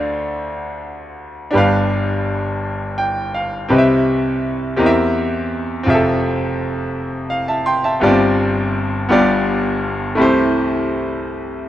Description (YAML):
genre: gospel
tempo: 56 BPM (dotted quarters)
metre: 6/8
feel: straight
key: C major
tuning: A4 = 440 Hz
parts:
  - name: bright concert grand piano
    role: solo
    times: 0.0-11.7 s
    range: F1 to C6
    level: -16 LUFS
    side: equal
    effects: none
room: light reverb, small room ambience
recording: rough home demo mix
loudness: -15 LUFS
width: side -12 dB against mid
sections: 0.0-11.7 A section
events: grand piano fill 2.6-3.7, 6.9-8.0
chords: 0.0 Dm7; 1.5 G7; 3.7 Cmaj7; 4.8 C7/E; 5.9 Fmaj7; 8.0 G7sus4; 9.1 G7; 10.2 C6